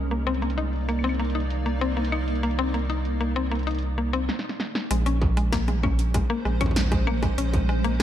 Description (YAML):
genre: IDM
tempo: 97 BPM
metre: 4/4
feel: straight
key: unclear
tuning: A4 = 438 Hz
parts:
  - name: granular cloud pad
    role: sustained chords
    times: 0.0-8.0 s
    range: Ab3 to D5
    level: -32 LUFS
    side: equal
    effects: built-in reverb
  - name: round analog bass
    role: bass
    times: 0.0-8.0 s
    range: Bb1 to C2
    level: -25 LUFS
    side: right 1 dB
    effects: tube saturation
  - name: mallet-like synth pluck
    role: arpeggios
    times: 0.1-8.0 s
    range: Ab3 to Eb4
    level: -28 LUFS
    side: left 4 dB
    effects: chorus, digital delay
  - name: electro analog drum machine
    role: drums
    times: 0.3-8.0 s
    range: claves, hi-hat, snare drum, toms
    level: -31 LUFS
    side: right 1 dB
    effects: low-pass filter on hats, small room ambience, low-pass filter on perc, low-pass filter on snare, low-pass filter on toms, digital delay
  - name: electronic kick drum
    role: drums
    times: 5.2-8.0 s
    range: none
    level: -26 LUFS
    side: equal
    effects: distortion, small room ambience
room: light reverb, digital ambience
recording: dark, warm production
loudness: -22 LUFS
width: side -11 dB against mid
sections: 0.0-4.9 A section; 4.9-8.0 B section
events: break 4.3-4.9; drum fill 4.3-4.9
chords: 0.0 Cm9; 4.9 Bbm9